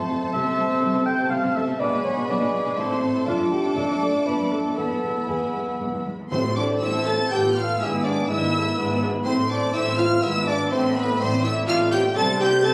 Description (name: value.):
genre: quick classical-period movement for symphony orchestra.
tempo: 123 BPM.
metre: 3/4.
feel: rubato.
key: A minor.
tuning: A4 = 435 Hz.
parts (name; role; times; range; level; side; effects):
rich studio violin section; melody; 0.0-12.7 s; A5 to A6; -32 LUFS; equal; none.
clear studio violin section; second line; 0.0-12.7 s; E4 to A5; -35 LUFS; equal; none.
concert flute; second line; 0.0-12.7 s; B4 to G6; -33 LUFS; equal; none.
dark clarinet; second line; 0.0-12.7 s; B3 to G5; -30 LUFS; equal; none.
mellow cor anglais; second line; 0.0-12.7 s; G#4 to E5; -36 LUFS; equal; none.
mellow bassoon; accompaniment; 0.0-12.7 s; G#3 to D4; -34 LUFS; equal; none.
mellow French horn section; sustained chords; 0.0-12.7 s; G#3 to A4; -29 LUFS; equal; none.
rich studio cello section; bass; 0.0-12.7 s; E2 to C3; -33 LUFS; equal; none.
rich studio viola section; accompaniment; 0.1-12.7 s; G#3 to A4; -33 LUFS; equal; none.
rich studio double bass section; bass; 0.1-12.7 s; E1 to C2; -35 LUFS; equal; none.
timpani; percussion; 6.3-7.0 s; A2; -35 LUFS; equal; none.
room: wet recital hall reverb, RT60 1.3 s.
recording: recorded on a phone in the room, studio ambience.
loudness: -23 LUFS.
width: mono.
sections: 0.0-6.3 A section; 6.3-12.7 B section.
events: none.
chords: 0.3 Am/C; 1.8 G#dim/B; 2.8 Am; 3.3 Dm/F; 4.3 Bm7b5/F; 4.8 E; 6.3 Am; 7.3 Bm7b5/A; 7.8 E7/G#; 9.3 Am; 10.2 E7/G#; 10.7 Am; 12.2 Am/C.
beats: | 0.33 0.81 1.30 | 1.79 2.28 2.77 | 3.26 3.75 4.25 | 4.76 5.28 5.79 | 6.31 6.81 7.30 | 7.79 8.28 8.77 | 9.25 9.74 10.22 | 10.71 11.19 11.68 | 12.16 12.65.